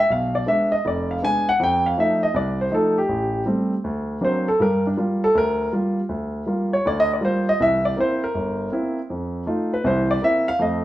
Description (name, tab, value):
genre	solo jazz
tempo	160 BPM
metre	4/4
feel	swing 66% on 8ths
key	unclear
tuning	A4 = 440 Hz
part	warm grand piano	solo	0.0-10.8 s	F1 to G#5	-19 LUFS	equal	none
room	moderate studio reverb, RT60 0.7 s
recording	band playing live in one room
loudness	-19 LUFS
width	side -14 dB against mid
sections	0.0-10.6 A section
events	grand piano solo 0.0-10.8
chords	0.1 Bdim7; 1.6 F7; 3.1 Am7; 3.8 Daug7; 4.6 Gm7; 7.6 C7; 9.1 F7; 9.8 C7